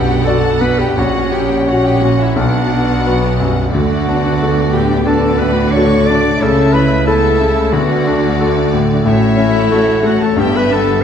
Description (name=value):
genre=classical, romantic movement for piano and orchestra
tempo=89 BPM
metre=4/4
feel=uneven beats, rubato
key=unclear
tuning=A4 = 440 Hz
part: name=clear concert grand piano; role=melody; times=0.0-11.0 s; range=A#1 to D5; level=-16 LUFS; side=left 2 dB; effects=none
part: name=warm symphonic violin section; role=melody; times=0.0-11.0 s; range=C#5 to F#5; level=-26 LUFS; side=left 2 dB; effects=none
part: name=warm clarinet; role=second line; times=0.0-11.0 s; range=D4 to D5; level=-18 LUFS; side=left 1 dB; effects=none
part: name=warm symphonic violin section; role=second line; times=0.0-11.0 s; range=D5 to D6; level=-24 LUFS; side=left 2 dB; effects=none
part: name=rich symphonic viola section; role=accompaniment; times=0.0-11.0 s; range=A3 to G4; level=-22 LUFS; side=right 2 dB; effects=none
part: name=dark French horn section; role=sustained chords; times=0.0-11.0 s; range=F#3 to D4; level=-20 LUFS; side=left 3 dB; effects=none
part: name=rich studio cello section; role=bass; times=0.0-11.0 s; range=G2 to D3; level=-22 LUFS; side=right 4 dB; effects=none
part: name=rich symphonic double bass section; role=bass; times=0.0-11.0 s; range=G1 to D2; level=-21 LUFS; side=right 5 dB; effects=none
room=wet scoring stage reverb, RT60 1.6 s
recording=dark, warm production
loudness=-11 LUFS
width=side -8 dB against mid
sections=0.0-11.0 A section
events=none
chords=0.0 Bm; 1.0 F#/A#; 2.4 Bm; 3.7 D; 6.4 A/C#; 7.7 D; 9.1 F#m/A; 10.4 Em/G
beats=0.24 | 0.96 1.67 2.36 3.04 | 3.73 4.39 5.05 5.73 | 6.40 7.06 7.73 8.41 | 9.07 9.72 10.38